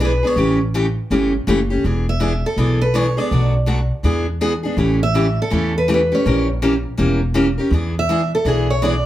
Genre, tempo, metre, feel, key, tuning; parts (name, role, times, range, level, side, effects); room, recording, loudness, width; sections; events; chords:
acoustic string swing (jazz manouche); 163 BPM; 4/4; swing 63% on 8ths; A4 = 441 Hz
picked steel-string acoustic guitar; melody; 0.0-9.0 s; G#4 to E5; -20 LUFS; equal
picked steel-string acoustic guitar; accompaniment; 0.0-8.9 s; B2 to A#4; -19 LUFS; left 1 dB
upright bass; bass; 0.0-9.0 s; E1 to E2; -19 LUFS; equal
moderate club reverb, RT60 0.8 s; heard from further back in the room; -15 LUFS; side -13 dB against mid
0.0-9.1 A section
0.4 A7; 1.8 E7; 3.3 Bm7; 4.0 E7; 4.8 A7; 6.2 A#dim7; 7.7 E7